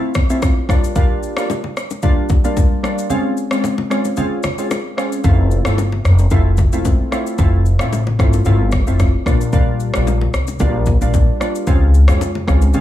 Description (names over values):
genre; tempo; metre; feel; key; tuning
afrobeats; 112 BPM; 4/4; swing 55% on 16ths; F major; A4 = 442 Hz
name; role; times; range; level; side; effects
glassy digital keys; accompaniment; 0.0-12.8 s; G3 to F4; -20 LUFS; equal; chorus
afro-pop drum kit; drums; 0.1-12.8 s; kick drum, rim click, shaker; -17 LUFS; equal; none
bongos and congas; percussion; 0.2-12.8 s; none; -26 LUFS; left 3 dB; none
upright bass; bass; 5.2-12.8 s; E1 to F2; -14 LUFS; equal; none
room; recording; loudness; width
studio reverb; small room ambience; -13 LUFS; side -13 dB against mid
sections
0.0-12.8 A section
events
break 3.1-5.2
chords
0.0 Fmaj7; 0.7 Bb6; 3.1 Dbmaj7; 5.2 Fmaj7; 9.3 Bb6; 11.7 Dbmaj7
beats
0.42 | 0.96 1.49 2.03 2.56 | 3.10 3.64 4.17 4.71 | 5.24 5.78 6.32 6.85 | 7.39 7.92 8.46 8.99 | 9.53 10.06 10.60 11.14 | 11.67 12.21 12.74